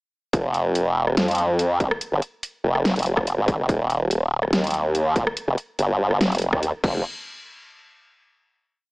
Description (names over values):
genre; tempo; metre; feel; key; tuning
heavy wobble dubstep; 143 BPM; 4/4; half-time; unclear; A4 = 440 Hz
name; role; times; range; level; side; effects
formant-sweep wobble bass; bass; 0.3-7.0 s; Eb1 to F2; -20 LUFS; equal; chorus, overdrive
dubstep drum kit; drums; 0.3-6.9 s; crash cymbal, hi-hat, rim click, snare drum; -25 LUFS; equal; studio reverb
electronic kick drum; drums; 0.3-6.9 s; none; -25 LUFS; equal; distortion, studio reverb
room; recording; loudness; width
digital ambience; small speaker sound; -20 LUFS; side -24 dB against mid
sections
0.3-7.0 drop; 7.0-8.7 final hit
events
drop 0.3-7.0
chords
none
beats
| 0.33 0.75 1.17 1.59 | 2.01 2.43 2.85 3.27 | 3.69 4.11 4.53 4.95 | 5.37 5.79 6.21 6.63